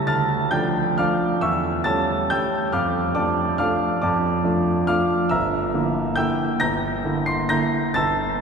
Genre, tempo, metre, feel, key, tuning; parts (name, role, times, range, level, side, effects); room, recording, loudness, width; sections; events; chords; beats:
classical, piano waltz; 137 BPM; 3/4; uneven beats, rubato; D minor; A4 = 440 Hz
clear concert grand piano; solo; 0.0-8.4 s; G1 to C7; -19 LUFS; right 1 dB
wet cathedral reverb, RT60 5.9 s; heard from further back in the room; -19 LUFS; side -5 dB against mid
0.0-8.4 A section
0.1 Dm; 1.4 A7/E; 2.7 Dm/F; 5.3 Em7b5/G
| 0.06 0.52 0.98 | 1.41 1.84 2.29 | 2.73 3.15 3.59 | 4.02 4.44 4.87 | 5.30 5.72 6.16 | 6.61 7.05 7.50 | 7.95 8.39